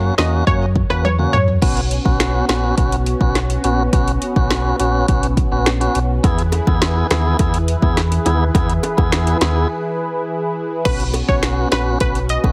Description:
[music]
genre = dancehall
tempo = 104 BPM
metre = 4/4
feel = straight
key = unclear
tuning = A4 = 440 Hz
[part]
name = tonewheel organ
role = accompaniment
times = 0.0-12.5 s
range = A#3 to G#4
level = -24 LUFS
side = equal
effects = overdrive, sidechain pumping
[part]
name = sub bass with octave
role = bass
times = 0.0-12.5 s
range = A#1 to F#2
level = -21 LUFS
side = equal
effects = none
[part]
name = analog pluck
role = melody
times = 0.2-1.4, 10.9-12.4 s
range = B4 to D#5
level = -24 LUFS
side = equal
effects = chorus, digital delay
[part]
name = afro-pop drum kit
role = drums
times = 0.2-12.5 s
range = crash cymbal, finger snaps, hi-hat, kick drum, rim click, snare drum, toms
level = -21 LUFS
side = equal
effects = none
[part]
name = warm analog pad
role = sustained chords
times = 1.6-12.5 s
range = E3 to B4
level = -27 LUFS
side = equal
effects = chorus, sidechain pumping
[part]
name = bongos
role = percussion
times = 6.2-12.5 s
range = none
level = -29 LUFS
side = equal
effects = none
[sound]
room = digital ambience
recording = heavily compressed radio sound, multiband compression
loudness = -17 LUFS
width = mono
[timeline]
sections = 0.0-1.6 A section; 1.6-10.9 B section; 10.9-12.5 C section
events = drum fill 1.0-1.6; break 9.7-10.9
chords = 0.0 F#; 1.6 Bsus2; 6.2 E; 10.9 Bsus2

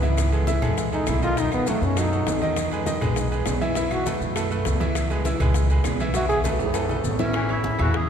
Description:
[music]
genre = latin, salsa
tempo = 201 BPM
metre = 4/4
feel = straight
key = unclear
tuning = A4 = 440 Hz
[part]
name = bright grand piano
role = accompaniment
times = 0.0-8.0 s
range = D#3 to E6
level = -27 LUFS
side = right 1 dB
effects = none
[part]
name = upright bass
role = bass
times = 0.0-8.1 s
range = A1 to F#2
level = -24 LUFS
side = equal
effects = none
[part]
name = bongos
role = percussion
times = 0.0-8.1 s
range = none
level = -34 LUFS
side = left 5 dB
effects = none
[part]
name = congas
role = percussion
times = 0.0-8.1 s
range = none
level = -32 LUFS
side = left 2 dB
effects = none
[part]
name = maracas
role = percussion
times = 0.0-7.3 s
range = none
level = -38 LUFS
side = left 7 dB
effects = none
[part]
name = timbales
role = percussion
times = 0.0-7.9 s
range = none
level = -33 LUFS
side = right 3 dB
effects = none
[part]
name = claves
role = percussion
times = 0.2-7.9 s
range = none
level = -43 LUFS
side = left 1 dB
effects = none
[part]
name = clear trombone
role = melody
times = 0.9-4.1, 6.2-6.4 s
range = A3 to G#4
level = -28 LUFS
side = equal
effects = none
[part]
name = warm oboe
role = melody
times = 7.2-8.1 s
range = C#4 to G#4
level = -29 LUFS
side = left 1 dB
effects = none
[part]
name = breathy baritone saxophone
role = second line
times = 7.4-8.0 s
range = C#3 to E3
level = -31 LUFS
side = left 5 dB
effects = none
[sound]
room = wet cathedral reverb, RT60 5.2 s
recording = recorded in a church or concert hall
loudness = -20 LUFS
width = side -8 dB against mid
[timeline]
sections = 0.0-7.3 A section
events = trombone solo 0.0-7.3; drum fill 6.6-7.3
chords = 0.2 Amaj7/C#; 1.4 B7; 2.6 Emaj7; 3.8 B9sus4; 5.0 C#m7; 6.2 B7sus4; 7.3 A

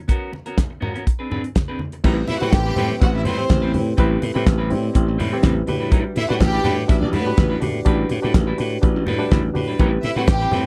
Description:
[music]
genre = disco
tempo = 124 BPM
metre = 4/4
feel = straight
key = A dorian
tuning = A4 = 440 Hz
[part]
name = semi-hollow electric guitar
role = accompaniment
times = 0.1-10.7 s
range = G3 to B4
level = -30 LUFS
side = equal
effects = none
[part]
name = damped 70s drum kit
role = drums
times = 0.1-10.6 s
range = crash cymbal, hi-hat, kick drum, snare drum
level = -20 LUFS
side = equal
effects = none
[part]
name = congas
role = percussion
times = 0.1-10.6 s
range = none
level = -31 LUFS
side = equal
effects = none
[part]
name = reed electric piano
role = accompaniment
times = 2.0-10.7 s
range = C4 to E5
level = -27 LUFS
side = equal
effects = spring reverb
[part]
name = slap bass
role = bass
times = 2.0-10.7 s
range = A1 to A2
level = -24 LUFS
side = equal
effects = none
[part]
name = bright studio violin section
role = second line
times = 2.3-10.7 s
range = B3 to G5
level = -27 LUFS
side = equal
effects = none
[sound]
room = little or no reverb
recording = dry, close 1970s-style studio recording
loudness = -20 LUFS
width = mono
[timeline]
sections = 0.0-2.0 A section; 2.0-10.7 B section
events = reed electric piano fill 5.2-5.9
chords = 0.1 F#add11/B; 1.1 G#dim; 2.0 Am9; 5.7 Em7/A; 9.8 Am9

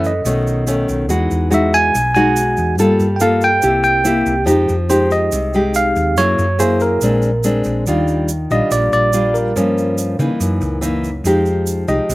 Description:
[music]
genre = bossa nova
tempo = 142 BPM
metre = 4/4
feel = straight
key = Eb major from 7.9 s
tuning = A4 = 440 Hz
[part]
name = barky tine electric piano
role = melody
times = 0.0-12.1 s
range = Bb4 to G#5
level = -17 LUFS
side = right 1 dB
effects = slow stereo tremolo, slapback echo
[part]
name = nylon-string guitar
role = accompaniment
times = 0.0-12.1 s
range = Gb2 to A4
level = -16 LUFS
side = left 1 dB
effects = slapback echo
[part]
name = hollow-body short-scale fingered electric bass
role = bass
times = 0.0-12.1 s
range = Bb1 to Db3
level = -20 LUFS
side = equal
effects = none
[part]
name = egg shaker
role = percussion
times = 0.0-12.1 s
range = none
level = -29 LUFS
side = right 6 dB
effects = none
[sound]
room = little or no reverb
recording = recorded outdoors, with no room sound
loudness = -13 LUFS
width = side -18 dB against mid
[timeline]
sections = 0.0-7.9 A section; 7.9-12.1 B section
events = none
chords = 0.2 B9; 1.1 Emaj9; 2.8 Gm9; 3.6 C7; 4.5 Fm9; 6.2 Gb9; 7.0 Bb9; 7.9 Ebmaj9; 9.6 Gm7b5; 10.4 Gb6; 11.2 Fm9

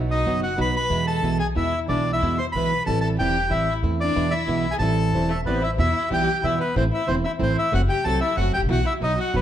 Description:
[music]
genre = tango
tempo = 185 BPM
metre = 3/4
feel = rubato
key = A minor, E harmonic minor from 5.8 s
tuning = A4 = 440 Hz
[part]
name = nylon-string guitar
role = accompaniment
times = 0.0-9.4 s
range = B2 to F#4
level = -25 LUFS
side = right 3 dB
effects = none
[part]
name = upright bass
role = bass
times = 0.0-9.4 s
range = E1 to E2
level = -26 LUFS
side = equal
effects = none
[part]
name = bandoneon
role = melody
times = 0.1-9.4 s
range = A4 to C6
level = -25 LUFS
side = right 1 dB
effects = none
[part]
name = warm violin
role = second line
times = 0.1-9.4 s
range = A3 to C5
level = -28 LUFS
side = left 7 dB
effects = none
[part]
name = hollow-body jazz guitar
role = second line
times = 5.1-5.8 s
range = C5 to E5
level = -33 LUFS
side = left 1 dB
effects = none
[sound]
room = moderate large studio reverb, RT60 1.2 s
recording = dark, warm production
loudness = -20 LUFS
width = side -10 dB against mid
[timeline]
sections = 0.0-5.8 A section; 5.8-9.4 B section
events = none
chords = 0.0 B; 0.9 E; 2.9 Am7; 3.8 Am/E; 4.2 E; 4.8 Am7; 5.8 Em; 6.8 Am; 7.7 F#dim; 8.7 Bsus4

